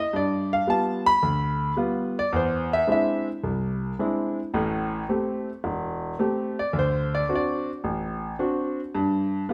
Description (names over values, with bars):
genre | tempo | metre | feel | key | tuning
solo jazz | 109 BPM | 4/4 | swing 69% on 8ths | unclear | A4 = 437 Hz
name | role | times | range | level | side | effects
clear concert grand piano | solo | 0.0-9.5 s | E1 to B5 | -26 LUFS | equal | none
room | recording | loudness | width
wet large studio reverb, RT60 1.2 s | none | -26 LUFS | mono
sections
0.0-9.5 A section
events
grand piano solo 0.0-9.5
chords
0.1 G7; 2.3 Eaug7; 4.5 Am7; 6.7 D7; 8.9 N.C.